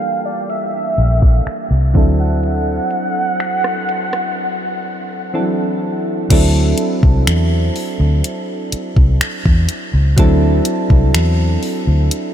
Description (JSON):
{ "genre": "contemporary R&B", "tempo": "62 BPM", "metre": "4/4", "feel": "straight", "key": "unclear", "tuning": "A4 = 440 Hz", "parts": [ { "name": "warm velvety synth lead", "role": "melody", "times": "0.0-5.3 s", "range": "D5 to F#5", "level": "-21 LUFS", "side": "right 1 dB", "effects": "chorus, tape echo" }, { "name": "soft electric-piano-like synth keys", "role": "accompaniment", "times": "0.0-12.3 s", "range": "E3 to A4", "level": "-20 LUFS", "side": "right 1 dB", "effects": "chorus" }, { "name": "smooth R&B drum kit", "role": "drums", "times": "0.0-12.3 s", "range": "crash cymbal, finger snaps, hi-hat, kick drum, rim click", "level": "-17 LUFS", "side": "equal", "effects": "none" }, { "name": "vintage muted fingered electric bass", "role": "bass", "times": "1.0-12.1 s", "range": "Bb1 to E2", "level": "-14 LUFS", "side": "equal", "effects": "none" } ], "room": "moderate huge ambient reverb, RT60 8.1 s", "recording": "dreamy mix soaked in reverb, low-pass filter", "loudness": "-13 LUFS", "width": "side -10 dB against mid", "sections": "0.0-6.3 A section; 6.3-12.3 B section", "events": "filter sweep 0.0-6.3; break 4.4-6.3", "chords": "0.0 C13; 1.9 D9" }